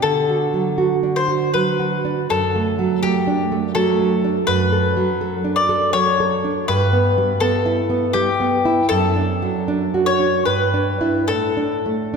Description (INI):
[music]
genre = romantic duo for mandolin and classical guitar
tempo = 70-84 BPM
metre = 3/4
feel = rubato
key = D major from 4.5 s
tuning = A4 = 440 Hz
[part]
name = mandolin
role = melody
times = 0.0-12.2 s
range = G4 to D5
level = -20 LUFS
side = left 4 dB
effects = none
[part]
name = nylon-string guitar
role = accompaniment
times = 0.0-12.2 s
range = F#2 to A4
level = -19 LUFS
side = right 3 dB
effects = none
[sound]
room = wet church reverb, RT60 2.5 s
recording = recorded in a church or concert hall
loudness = -16 LUFS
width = side -5 dB against mid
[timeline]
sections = 0.0-12.2 A section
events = none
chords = 0.0 D; 2.3 D/F#; 6.7 Em/G; 8.9 D/F#; 10.5 Em7/G; 11.3 D5/A